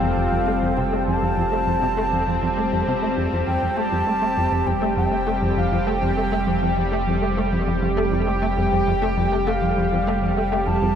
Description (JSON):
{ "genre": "ambient, sequencer-driven space music", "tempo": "100 BPM", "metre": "4/4", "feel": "straight", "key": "unclear", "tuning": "A4 = 441 Hz", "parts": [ { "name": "baroque flute", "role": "melody", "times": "0.0-11.0 s", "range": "F5 to A5", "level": "-25 LUFS", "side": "left 1 dB", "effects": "tape echo" }, { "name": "lush unison pad", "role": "sustained chords", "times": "0.0-11.0 s", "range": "G3 to A4", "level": "-23 LUFS", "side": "right 1 dB", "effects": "chorus" }, { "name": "plucky analog bass", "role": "riff", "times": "0.0-10.9 s", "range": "F2 to A3", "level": "-24 LUFS", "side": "equal", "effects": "ensemble chorus, tape echo" }, { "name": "warm sub bass", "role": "bass", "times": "0.0-11.0 s", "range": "F1", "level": "-28 LUFS", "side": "equal", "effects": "tube saturation" } ], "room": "wet huge ambient reverb, RT60 9.1 s", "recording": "none", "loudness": "-19 LUFS", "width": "side -8 dB against mid", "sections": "0.0-11.0 A section", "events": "filter sweep on analog synth bass 0.0-11.0", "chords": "0.0 Fadd9" }